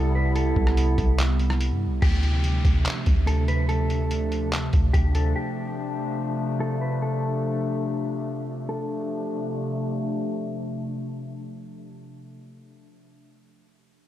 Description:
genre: hip hop, atmospheric cloud-rap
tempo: 144 BPM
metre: 4/4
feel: half-time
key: unclear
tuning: A4 = 440 Hz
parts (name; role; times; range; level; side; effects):
- mellow electric guitar; melody; 0.0-9.9 s; G4 to B4; -33 LUFS; equal; spring reverb, low-pass filter, tape echo
- warbly tape-like pad; sustained chords; 0.0-12.4 s; C3 to E4; -28 LUFS; equal; chorus, built-in reverb, low-pass filter
- soft 808-style bass; bass; 0.0-5.3 s; C2 to G2; -22 LUFS; equal; none
- lo-fi sampler-style drum kit; drums; 0.4-5.2 s; crash cymbal, handclaps, hi-hat, kick drum, rim click; -25 LUFS; equal; overdrive
- downlifter; sound effects; 2.0-5.4 s; none; -38 LUFS; equal; none
room: little or no reverb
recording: none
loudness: -22 LUFS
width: side -12 dB against mid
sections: 0.0-2.0 A section; 2.0-8.7 B section; 8.7-12.0 C section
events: filter sweep 2.0-8.7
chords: 0.0 Cmaj7; 2.0 Dm7; 5.4 F6

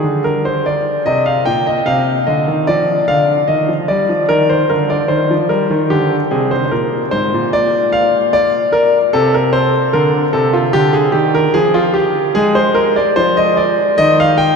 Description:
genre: classical-period piano sonatina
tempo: 74 BPM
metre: 4/4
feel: straight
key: Eb major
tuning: A4 = 440 Hz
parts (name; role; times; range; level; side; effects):
- clear grand piano; solo; 0.0-14.6 s; Ab2 to G5; -12 LUFS; equal; none
room: wet cathedral reverb, RT60 6.8 s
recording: minimal, uncompressed stereo recording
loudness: -12 LUFS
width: side -5 dB against mid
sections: 0.0-14.6 A section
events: none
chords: 0.0 Eb5; 2.7 Dm; 5.9 Bb; 9.1 C13sus4; 10.7 Dmadd11; 12.4 Fm6; 14.0 Eb

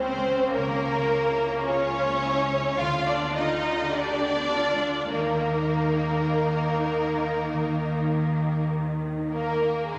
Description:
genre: classical, slow romantic movement for symphony orchestra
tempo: 49-54 BPM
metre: 4/4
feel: rubato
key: unclear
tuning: A4 = 438 Hz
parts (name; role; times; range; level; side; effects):
- rich studio violin section; melody; 0.0-10.0 s; Ab3 to F4; -32 LUFS; equal; none
- rich studio violin section; second line; 0.0-10.0 s; Ab4 to F5; -29 LUFS; equal; none
- rich studio viola section; accompaniment; 0.0-9.3 s; Db4 to G4; -36 LUFS; equal; none
- concert harp; arpeggios; 0.0-10.0 s; Ab2 to Bb4; -32 LUFS; equal; none
- rich studio cello section; bass; 0.0-10.0 s; Ab2 to Eb3; -39 LUFS; equal; none
- warm studio double bass section; bass; 0.0-10.0 s; Ab1 to Eb2; -40 LUFS; equal; none
room: wet scoring stage reverb, RT60 1.6 s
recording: none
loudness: -25 LUFS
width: mono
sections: 0.0-10.0 A section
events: none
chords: 0.0 Bbm7/Db; 0.5 Bbm7b5/Db; 2.8 Ddim7; 5.1 Ebsus4; 7.5 Eb

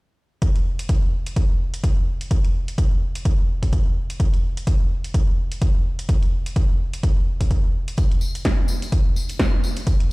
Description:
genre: house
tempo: 127 BPM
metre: 4/4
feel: swing 58% on 16ths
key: none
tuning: none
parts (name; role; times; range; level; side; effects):
- electronic kick drum; drums; 0.4-10.0 s; none; -19 LUFS; equal; studio reverb
- punchy analog drum machine; drums; 0.4-10.1 s; hi-hat, snare drum; -30 LUFS; equal; studio reverb
- tambourine; percussion; 8.0-10.0 s; none; -35 LUFS; left 3 dB; none
room: little or no reverb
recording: played on a big sound system in a bare room, stone room reverb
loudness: -19 LUFS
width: side -24 dB against mid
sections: 0.4-10.1 A section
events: none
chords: none

